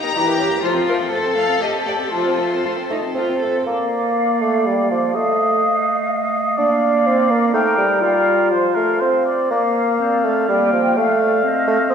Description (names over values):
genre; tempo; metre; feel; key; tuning
quick classical-period movement for symphony orchestra; 123 BPM; 3/4; rubato; Bb major; A4 = 440 Hz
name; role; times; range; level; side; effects
warm studio violin section; melody; 0.0-3.1 s; Bb4 to Bb5; -24 LUFS; left 4 dB; none
warm chamber violin section; second line; 0.0-3.7 s; G3 to A4; -24 LUFS; left 2 dB; none
warm chamber cello section; bass; 0.0-3.7 s; Eb4 to A4; -22 LUFS; left 1 dB; none
warm chamber viola section; accompaniment; 0.2-2.6 s; E3 to F3; -26 LUFS; equal; none
mellow bassoon; accompaniment; 2.9-11.9 s; F3 to D4; -18 LUFS; right 2 dB; none
large flute ensemble; second line; 3.7-11.9 s; D5 to G5; -25 LUFS; left 3 dB; none
mellow oboe; second line; 3.7-11.9 s; Bb4 to F5; -21 LUFS; equal; none
warm clarinet; second line; 3.7-11.9 s; A3 to F4; -22 LUFS; equal; none
room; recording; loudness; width
wet concert hall reverb, RT60 2.0 s; recorded in a church or concert hall; -15 LUFS; side -7 dB against mid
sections
0.0-3.7 A section; 3.7-11.9 B section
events
none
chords
0.2 Edim7; 0.6 F; 3.7 Bb; 5.1 F7/A; 6.6 Bb; 7.5 Eb; 8.0 Fsus4; 9.0 F5/C; 9.5 Bb; 11.0 F7/A